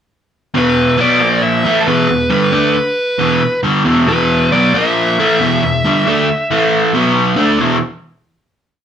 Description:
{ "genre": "rock", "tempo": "136 BPM", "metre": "4/4", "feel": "straight", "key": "E minor", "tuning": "A4 = 440 Hz", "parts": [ { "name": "overdriven semi-hollow guitar", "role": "riff", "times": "0.5-7.8 s", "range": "E2 to D4", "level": "-12 LUFS", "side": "equal", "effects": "none" }, { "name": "dark smooth lead guitar", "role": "melody", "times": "0.6-7.1 s", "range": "A4 to E5", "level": "-16 LUFS", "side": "equal", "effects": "overdrive" } ], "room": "moderate studio reverb, RT60 0.6 s", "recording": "band playing live in one room", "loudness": "-11 LUFS", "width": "side -8 dB against mid", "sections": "0.5-7.6 riff; 7.6-8.8 final chord", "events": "none", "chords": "0.5 E5; 1.2 A#5; 1.7 Em; 4.7 A#5; 5.2 Em; 6.5 A5; 6.9 B5; 7.4 D5; 7.6 E5", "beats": "| 0.54 0.99 1.43 1.87 | 2.32 2.76 3.20 3.64 | 4.08 4.53 4.97 5.41 | 5.84 6.28 6.72 7.15 | 7.59" }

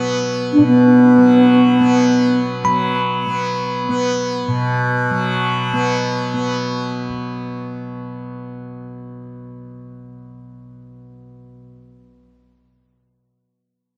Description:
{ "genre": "world meditative, free-time meditation music", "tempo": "free time", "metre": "none", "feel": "none", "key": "unclear", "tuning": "A4 = 440 Hz", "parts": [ { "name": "tanpura", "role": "drone", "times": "0.0-12.0 s", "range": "B2 to B3", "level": "-23 LUFS", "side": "equal", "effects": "none" }, { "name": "reedy bass flute", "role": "melody", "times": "0.5-2.4 s", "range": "B3 to D4", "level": "-14 LUFS", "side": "equal", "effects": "delay" }, { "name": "bell-like tine electric piano", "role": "texture", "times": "2.6-7.1 s", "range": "B5", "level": "-24 LUFS", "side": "equal", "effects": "none" } ], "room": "wet cathedral reverb, RT60 4.9 s", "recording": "dark, warm production", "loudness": "-16 LUFS", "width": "mono", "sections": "0.0-2.6 A section; 2.6-6.9 B section", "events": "none", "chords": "none", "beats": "free time" }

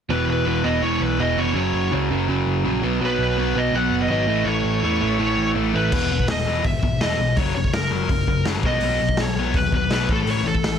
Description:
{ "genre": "punk rock", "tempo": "165 BPM", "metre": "4/4", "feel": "straight", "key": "unclear", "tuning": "A4 = 438 Hz", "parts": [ { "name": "high-gain lead guitar", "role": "melody", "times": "0.1-10.8 s", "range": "A4 to F#5", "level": "-24 LUFS", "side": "equal", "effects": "distortion" }, { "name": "overdriven electric guitar", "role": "riff", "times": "0.1-10.8 s", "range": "E2 to B3", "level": "-24 LUFS", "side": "left 9 dB", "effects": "none" }, { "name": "overdriven electric guitar", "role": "riff", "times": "0.1-5.9 s", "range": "E2 to B3", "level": "-24 LUFS", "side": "right 13 dB", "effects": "none" }, { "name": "overdriven picked electric bass", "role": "bass", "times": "0.1-10.8 s", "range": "E1 to E2", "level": "-26 LUFS", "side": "equal", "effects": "none" }, { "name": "raw garage drum kit", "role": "drums", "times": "5.9-10.7 s", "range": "crash cymbal, hi-hat, kick drum, snare drum", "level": "-24 LUFS", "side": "equal", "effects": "none" } ], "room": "light reverb", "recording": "none", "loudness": "-18 LUFS", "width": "side -8 dB against mid", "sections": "0.1-5.9 A section; 5.9-10.8 B section", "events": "none", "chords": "0.1 E5; 1.6 F#; 2.8 B5; 4.3 A; 5.9 E; 7.4 F#; 8.6 B; 10.1 A5", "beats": "| 0.11 0.48 0.84 1.20 | 1.56 1.93 2.29 2.65 | 3.02 3.38 3.74 4.11 | 4.47 4.83 5.20 5.56 | 5.92 6.29 6.65 7.01 | 7.38 7.74 8.10 8.47 | 8.83 9.19 9.55 9.92 | 10.28 10.64" }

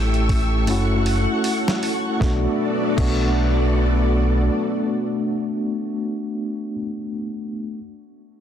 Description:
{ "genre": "trip hop", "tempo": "78 BPM", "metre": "4/4", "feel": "swing 59% on 16ths", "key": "B minor", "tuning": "A4 = 440 Hz", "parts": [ { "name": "bell-like tine electric piano", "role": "accompaniment", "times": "0.0-7.8 s", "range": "A3 to G4", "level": "-24 LUFS", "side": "left 1 dB", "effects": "medium stereo tremolo, low-pass filter, tape echo" }, { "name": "string machine, cellos", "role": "sustained chords", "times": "0.0-6.0 s", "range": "B3 to E6", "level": "-25 LUFS", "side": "equal", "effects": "ensemble chorus" }, { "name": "deep dub fingered electric bass", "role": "bass", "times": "0.0-4.5 s", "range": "F#1 to B1", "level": "-20 LUFS", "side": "equal", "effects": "none" }, { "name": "flickering grainy texture", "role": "texture", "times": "0.0-2.2 s", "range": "E4", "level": "-39 LUFS", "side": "right 2 dB", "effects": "none" }, { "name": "boom bap sampler-style drum kit", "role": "drums", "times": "0.1-3.2 s", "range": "crash cymbal, hi-hat, kick drum, snare drum", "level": "-25 LUFS", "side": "equal", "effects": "none" } ], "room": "light reverb", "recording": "dense, heavily limited modern master", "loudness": "-19 LUFS", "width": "side -9 dB against mid", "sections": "0.0-2.2 A section; 2.2-5.3 B section", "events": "filter sweep on fingered electric bass 0.0-2.2; filter sweep on tine electric piano 0.0-2.2", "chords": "0.0 A7; 0.7 F#m7; 2.2 Bm7", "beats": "0.67 1.44 | 2.21 2.98 3.75 4.52" }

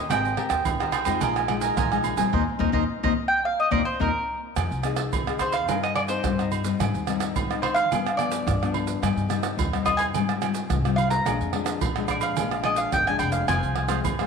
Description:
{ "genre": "samba and choro", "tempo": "108 BPM", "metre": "4/4", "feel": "straight", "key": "unclear", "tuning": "A4 = 438 Hz", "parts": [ { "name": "mandolin", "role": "melody", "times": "0.0-14.0 s", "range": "Bb4 to Bb5", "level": "-26 LUFS", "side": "equal", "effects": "none" }, { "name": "cavaquinho", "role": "accompaniment", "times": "0.0-4.1, 13.5-14.3 s", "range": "F4 to Ab5", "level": "-28 LUFS", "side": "right 8 dB", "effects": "none" }, { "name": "nylon-string guitar", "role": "accompaniment", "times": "0.0-14.3 s", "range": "F2 to Bb4", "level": "-28 LUFS", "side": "left 10 dB", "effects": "none" }, { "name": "upright bass", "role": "bass", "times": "0.0-14.3 s", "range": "F1 to Ab3", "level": "-30 LUFS", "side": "left 1 dB", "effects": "none" }, { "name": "agogo bells, tube shaker, surdo, pandeiro and tamborim", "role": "percussion", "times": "0.1-14.3 s", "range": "none", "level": "-27 LUFS", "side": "right 6 dB", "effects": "none" } ], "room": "wet echo chamber reverb, RT60 1.9 s, small room ambience", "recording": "1960s-style stereo with parts hard left and right", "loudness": "-22 LUFS", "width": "side -5 dB against mid", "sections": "0.0-4.6 A section; 4.6-14.3 B section", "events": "mandolin solo 0.0-4.6; band accent 2.3-4.6", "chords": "0.1 Abmaj9; 1.2 Bb7sus4; 2.3 Eb5; 4.6 Fm7; 5.7 Cm7/G; 6.8 Abmaj7; 7.9 G7; 9.0 Cm/G; 10.1 Fmadd9/Ab; 11.3 Bb7; 13.5 Fm", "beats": "| 0.10 0.66 1.22 1.77 | 2.33 2.89 3.45 4.00 | 4.56 5.12 5.68 6.24 | 6.79 7.35 7.91 8.47 | 9.03 9.59 10.14 10.70 | 11.26 11.82 12.37 12.93 | 13.49 14.05" }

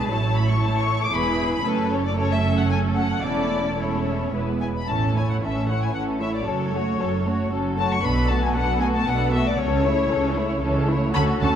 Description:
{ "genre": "quick classical-period movement for string orchestra", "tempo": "115 BPM", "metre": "3/4", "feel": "straight", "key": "A major", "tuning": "A4 = 440 Hz", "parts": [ { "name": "muted symphonic violin section", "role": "melody", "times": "0.0-11.5 s", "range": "B4 to D6", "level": "-27 LUFS", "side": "left 6 dB", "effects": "none" }, { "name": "muted studio violin section", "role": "second line", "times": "0.0-11.6 s", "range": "C#4 to C#5", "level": "-28 LUFS", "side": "left 3 dB", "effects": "none" }, { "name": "muted studio viola section", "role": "accompaniment", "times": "0.0-11.6 s", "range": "E3 to E4", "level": "-26 LUFS", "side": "right 2 dB", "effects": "none" }, { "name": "muted studio cello section", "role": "bass", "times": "0.0-11.5 s", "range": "E2 to A3", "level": "-28 LUFS", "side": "right 3 dB", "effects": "none" }, { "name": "muted symphonic double bass section", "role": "bass", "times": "0.0-11.5 s", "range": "E1 to A2", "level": "-25 LUFS", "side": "right 2 dB", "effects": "none" } ], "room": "moderate concert hall reverb, RT60 1.9 s", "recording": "dark, warm production", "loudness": "-20 LUFS", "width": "side -9 dB against mid", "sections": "0.0-4.9 A section; 4.9-11.6 B section", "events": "none", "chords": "0.1 A; 1.1 E; 1.7 F#m; 3.2 A/E; 4.3 E; 4.9 A; 6.5 F#m; 8.0 Bm7; 9.6 A/C#", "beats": "| 0.10 0.62 1.14 | 1.66 2.17 2.70 | 3.25 3.80 4.34 | 4.89 5.42 5.95 | 6.47 6.99 7.52 | 8.04 8.55 9.07 | 9.60 10.11 10.63 | 11.15" }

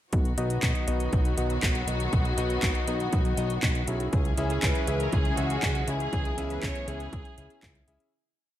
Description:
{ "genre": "italo disco", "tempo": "120 BPM", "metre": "4/4", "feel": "straight", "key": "B major", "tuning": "A4 = 439 Hz", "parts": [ { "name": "rich studio string section", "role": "sustained chords", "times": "0.1-8.1 s", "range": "D#3 to G#4", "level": "-33 LUFS", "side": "left 1 dB", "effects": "none" }, { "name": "fat analog bass", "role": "bass", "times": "0.1-8.0 s", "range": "B1 to C#2", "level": "-30 LUFS", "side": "equal", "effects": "tube saturation" }, { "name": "electronic kick drum", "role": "drums", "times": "0.1-7.7 s", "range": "none", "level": "-28 LUFS", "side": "equal", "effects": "overdrive" }, { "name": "house drum kit", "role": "drums", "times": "0.1-8.1 s", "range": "handclaps, hi-hat", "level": "-32 LUFS", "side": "equal", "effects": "overdrive, gated reverb" }, { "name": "clear electric grand piano", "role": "stabs", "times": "0.4-8.1 s", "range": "B3 to E5", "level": "-34 LUFS", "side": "left 2 dB", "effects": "low-pass filter" }, { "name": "warm chamber violin section", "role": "melody", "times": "4.5-7.9 s", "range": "E4 to C#5", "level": "-35 LUFS", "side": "right 1 dB", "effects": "none" } ], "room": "light reverb", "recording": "none", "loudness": "-24 LUFS", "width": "side -12 dB against mid", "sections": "0.1-8.1 verse", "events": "fade-out 5.5-8.1", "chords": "0.1 B; 4.1 C#m", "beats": "| 0.13 0.63 1.13 1.63 | 2.13 2.63 3.13 3.63 | 4.13 4.63 5.13 5.63 | 6.13 6.63 7.13 7.63" }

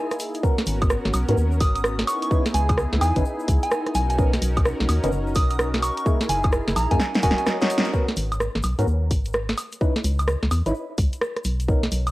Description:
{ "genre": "UK garage, two-step garage", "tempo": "128 BPM", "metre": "4/4", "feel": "swing 64% on 16ths", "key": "G# minor", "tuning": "A4 = 440 Hz", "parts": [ { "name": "warm analog pad", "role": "sustained chords", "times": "0.0-7.9 s", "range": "A#3 to A#4", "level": "-30 LUFS", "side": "equal", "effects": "chorus, sidechain pumping, cassette tape" }, { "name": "punchy analog drum machine", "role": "drums", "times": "0.1-12.1 s", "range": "hi-hat, rim click, snare drum, woodblock", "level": "-25 LUFS", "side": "equal", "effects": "none" }, { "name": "egg shaker", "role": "percussion", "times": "0.1-12.1 s", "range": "none", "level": "-43 LUFS", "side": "left 3 dB", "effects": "none" }, { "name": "percussive organ stab", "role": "stabs", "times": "0.4-11.8 s", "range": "A#3 to D#5", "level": "-28 LUFS", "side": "equal", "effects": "wide subtle chorus, cassette tape, analog delay" }, { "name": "electronic kick drum", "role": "drums", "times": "0.4-11.8 s", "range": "none", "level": "-22 LUFS", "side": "equal", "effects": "none" }, { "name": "organ-like FM bass", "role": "bass", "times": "0.7-12.1 s", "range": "D#1 to G#2", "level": "-23 LUFS", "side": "equal", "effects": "none" }, { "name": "soft synth bell", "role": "melody", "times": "1.6-7.4 s", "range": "G#5 to D#6", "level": "-27 LUFS", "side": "right 1 dB", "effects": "chorus, cassette tape, analog delay" } ], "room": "light reverb", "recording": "home recording on cassette", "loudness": "-20 LUFS", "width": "side -18 dB against mid", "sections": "0.0-7.9 A section; 7.9-12.1 B section", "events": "drop 0.0-7.9; drum fill 7.0-7.9; kick drops out 7.5-7.9; band accent 7.8", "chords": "0.4 G#m11; 2.1 C#m9; 4.0 Bmaj9; 6.1 F#13; 7.0 D#m7; 7.9 G#m11; 9.6 C#m9; 11.4 Bmaj9", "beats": "| 0.43 0.90 1.37 1.84 | 2.31 2.78 3.25 3.71 | 4.18 4.65 5.12 5.59 | 6.06 6.53 7.00 7.46 | 7.93 8.40 8.87 9.34 | 9.81 10.28 10.75 11.21 | 11.68" }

